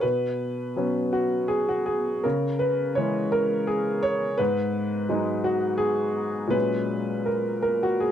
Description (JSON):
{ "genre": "neoclassical minimalist piano", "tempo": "82 BPM", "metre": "3/4", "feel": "rubato", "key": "B major", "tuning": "A4 = 441 Hz", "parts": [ { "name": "clear upright piano", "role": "solo", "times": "0.0-8.1 s", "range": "G#2 to C#5", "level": "-23 LUFS", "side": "equal", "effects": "none" } ], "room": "light reverb", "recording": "dry, close 1970s-style studio recording", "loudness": "-23 LUFS", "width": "side -10 dB against mid", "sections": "0.0-8.1 A section", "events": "none", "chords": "0.0 Bsus2; 2.2 C#m; 4.4 G#m7; 6.5 F#add9/A#" }